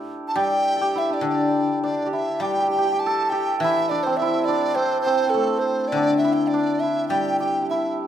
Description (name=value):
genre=chinese traditional, Chinese chamber ensemble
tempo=102 BPM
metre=2/4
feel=rubato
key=D shang mode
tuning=A4 = 440 Hz
part: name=hammered dulcimer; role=second line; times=0.0-8.1 s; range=A3 to A4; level=-23 LUFS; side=right 3 dB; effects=none
part: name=mellow hollow large dizi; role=melody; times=0.3-8.0 s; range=A4 to A5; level=-24 LUFS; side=left 1 dB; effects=none
part: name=guzheng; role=accompaniment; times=0.4-8.1 s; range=D3 to G3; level=-25 LUFS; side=left 3 dB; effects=none
room=moderate recital hall reverb, RT60 1.2 s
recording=minimal, uncompressed stereo recording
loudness=-19 LUFS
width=side -10 dB against mid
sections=0.0-2.4 A section; 2.4-8.1 B section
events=none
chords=none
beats=| 0.08 0.66 | 1.24 1.83 | 2.42 3.02 | 3.62 4.20 | 4.78 5.35 | 5.94 6.52 | 7.12 7.70